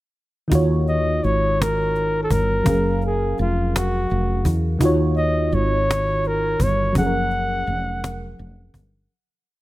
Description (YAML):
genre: slow six-eight R&B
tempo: 56 BPM (dotted quarters)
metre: 6/8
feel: straight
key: F# major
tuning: A4 = 439 Hz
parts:
  - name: mellow FM electric piano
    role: accompaniment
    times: 0.5-9.1 s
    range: D#3 to E#5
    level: -24 LUFS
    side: equal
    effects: chorus
  - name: woody fretless electric bass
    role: bass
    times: 0.5-9.1 s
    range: E#1 to E2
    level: -23 LUFS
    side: equal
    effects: analog chorus
  - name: cajon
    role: drums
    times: 0.5-8.9 s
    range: none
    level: -23 LUFS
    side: equal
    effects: none
  - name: mellow flugelhorn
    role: melody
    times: 0.9-8.4 s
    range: E#4 to F#5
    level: -23 LUFS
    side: equal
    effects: none
room: small room ambience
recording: none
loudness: -18 LUFS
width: side -16 dB against mid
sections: 0.5-9.1 verse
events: fade-out 6.9-9.1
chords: 0.5 D#m9; 2.7 F#maj9; 4.8 D#m9; 6.9 F#maj9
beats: | 0.52 1.59 | 2.66 3.73 | 4.80 5.88 | 6.95 8.02